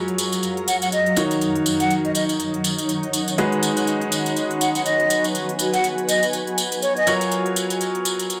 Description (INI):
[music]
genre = piano house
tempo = 122 BPM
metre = 4/4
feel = swing 57% on 16ths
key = G# dorian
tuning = A4 = 439 Hz
[part]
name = bright upright piano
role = riff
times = 0.0-8.4 s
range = D#3 to C#5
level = -27 LUFS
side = equal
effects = vintage 12-bit sampler grit
[part]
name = granular cloud pad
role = texture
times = 0.0-8.4 s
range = F#3 to A#5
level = -28 LUFS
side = equal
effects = built-in reverb
[part]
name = electronic hi-hat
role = drums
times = 0.1-8.4 s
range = none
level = -30 LUFS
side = equal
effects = studio reverb
[part]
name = tambourine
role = percussion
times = 0.2-8.4 s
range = none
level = -30 LUFS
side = equal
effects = none
[part]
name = breathy mellow silver concert flute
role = melody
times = 0.7-7.1 s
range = C#5 to F#5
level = -25 LUFS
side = equal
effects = vintage 12-bit sampler grit, dub echo
[sound]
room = moderate digital room reverb, RT60 0.9 s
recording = none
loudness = -21 LUFS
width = mono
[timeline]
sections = 0.0-8.4 A section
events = none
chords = 0.0 F#maj7; 1.2 D#m7; 3.4 G#m7; 7.1 F#maj7